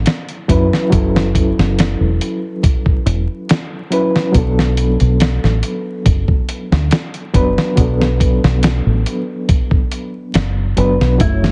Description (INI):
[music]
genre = trip hop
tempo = 70 BPM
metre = 4/4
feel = straight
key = unclear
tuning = A4 = 440 Hz
[part]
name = overdriven reed electric piano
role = accompaniment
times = 0.0-11.5 s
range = F#3 to B4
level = -21 LUFS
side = equal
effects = fast tremolo, low-pass filter, tape echo
[part]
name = deep dub fingered electric bass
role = bass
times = 0.0-11.5 s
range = E1 to F#2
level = -18 LUFS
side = equal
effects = none
[part]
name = dusty soul sampler-style drum kit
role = drums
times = 0.1-11.5 s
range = hi-hat, kick drum, snare drum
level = -18 LUFS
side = equal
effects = none
[part]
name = mellow electric guitar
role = melody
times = 11.2-11.5 s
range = E4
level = -24 LUFS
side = equal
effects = none
[part]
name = string machine, cellos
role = sustained chords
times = 11.2-11.5 s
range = C#5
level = -32 LUFS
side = equal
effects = ensemble chorus
[sound]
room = digital ambience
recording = heavily compressed radio sound, multiband compression, vinyl crackle, nothing above 10.6 kHz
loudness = -15 LUFS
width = mono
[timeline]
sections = 0.0-11.5 A section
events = none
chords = 0.0 F#m7; 4.3 Bm7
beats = 0.06 | 0.91 1.77 2.63 3.49 | 4.34 5.20 6.06 6.91 | 7.77 8.63 9.49 10.34 | 11.20